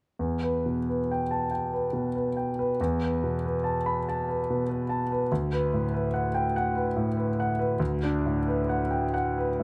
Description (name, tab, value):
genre	neoclassical minimalist piano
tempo	47 BPM (dotted quarters)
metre	6/8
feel	uneven beats, rubato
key	D major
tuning	A4 = 440 Hz
part	clear grand piano	solo	0.2-9.6 s	D2 to B5	-28 LUFS	equal	none
room	light reverb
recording	none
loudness	-28 LUFS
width	mono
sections	0.2-9.6 A section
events	none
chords	0.2 Em; 2.8 Asus2/E; 5.3 D6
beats	| 0.18 1.50 | 2.79 4.05 | 5.30 6.54 | 7.80 9.11